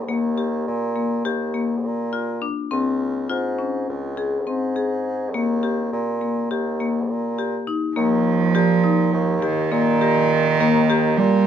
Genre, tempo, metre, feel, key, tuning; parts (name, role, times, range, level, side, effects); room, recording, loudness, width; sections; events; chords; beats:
contemporary instrumental, chamber music in an uneven meter; 206 BPM (eighths); 9/8; straight; Eb major; A4 = 441 Hz
warm bassoon; bass; 0.0-11.5 s; Db2 to Bb2; -24 LUFS; right 3 dB
marimba with medium hard mallets; arpeggios; 0.1-11.4 s; Bb3 to Ab4; -22 LUFS; left 5 dB
rich cello; second line; 8.0-11.5 s; Eb3 to G3; -19 LUFS; right 6 dB
moderate small room reverb, RT60 0.5 s; -19 LUFS; side -9 dB against mid
0.0-8.0 A section; 8.0-11.5 B section
0.0 Eb; 2.7 Dbmaj7(no3); 5.3 Eb
| 0.09 0.38 0.67 0.96 1.26 1.55 1.84 2.13 2.42 | 2.72 3.01 3.30 3.59 3.88 4.17 4.47 4.76 5.05 | 5.34 5.63 5.93 6.22 6.51 6.80 7.09 7.39 7.68 | 7.97 8.26 8.55 8.85 9.14 9.43 9.72 10.01 10.31 | 10.60 10.89 11.18